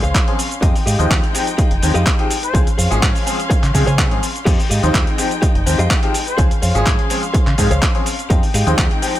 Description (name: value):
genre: filtered disco house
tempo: 125 BPM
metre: 4/4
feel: straight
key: F minor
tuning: A4 = 440 Hz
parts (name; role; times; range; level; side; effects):
- bright grand piano; accompaniment; 0.0-9.1 s; F3 to G5; -23 LUFS; left 2 dB; phaser, sidechain pumping
- rich studio string section; sustained chords; 0.0-9.2 s; Ab3 to C6; -26 LUFS; left 2 dB; vintage 12-bit sampler grit, sidechain pumping
- direct-recorded clean electric guitar; riff; 0.0-8.9 s; G4 to Ab5; -25 LUFS; left 1 dB; sidechain pumping
- deep dub fingered electric bass; bass; 0.0-8.9 s; F1 to Db3; -18 LUFS; equal; tube saturation, sidechain pumping
- dusty soul sampler-style drum kit; drums; 0.0-9.2 s; crash cymbal, handclaps, hi-hat, shaker; -22 LUFS; equal; sidechain pumping on hats, sidechain pumping on perc, sidechain pumping on cymbals
- electronic kick drum; drums; 0.1-8.9 s; none; -16 LUFS; equal; none
- dark trumpet section; melody; 2.4-2.6, 6.3-7.2 s; Ab4 to C5; -25 LUFS; left 1 dB; sidechain pumping, digital delay
room: digital ambience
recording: none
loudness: -14 LUFS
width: side -13 dB against mid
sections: 0.0-9.2 A section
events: none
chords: 0.0 Dbmaj7; 0.6 Fm9; 2.5 Dbmaj7; 4.5 Fm9; 6.4 Dbmaj7; 8.3 Fm9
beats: 0.15 | 0.63 1.11 1.59 2.07 | 2.55 3.03 3.51 3.99 | 4.47 4.95 5.43 5.91 | 6.39 6.87 7.35 7.83 | 8.31 8.79